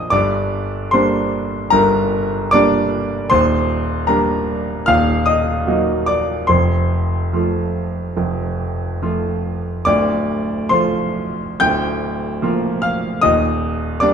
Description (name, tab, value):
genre	classical, romantic character piece for solo piano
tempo	64-78 BPM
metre	4/4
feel	rubato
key	unclear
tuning	A4 = 439 Hz
part	clear grand piano	solo	0.0-14.1 s	D1 to G6	-15 LUFS	equal	none
room	wet large studio reverb, RT60 1.3 s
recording	minimal, uncompressed stereo recording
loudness	-15 LUFS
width	side -7 dB against mid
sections	0.0-14.1 A section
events	none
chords	0.1 Gm; 3.3 Ebmaj7; 4.9 Ebm; 6.5 F; 9.9 Dm; 11.6 Bb/D; 13.2 Ebmaj7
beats	| 0.13 0.94 1.74 2.53 | 3.31 4.09 4.88 5.68 | 6.49 7.33 8.18 9.02 | 9.87 10.71 11.61 12.42 | 13.22 14.00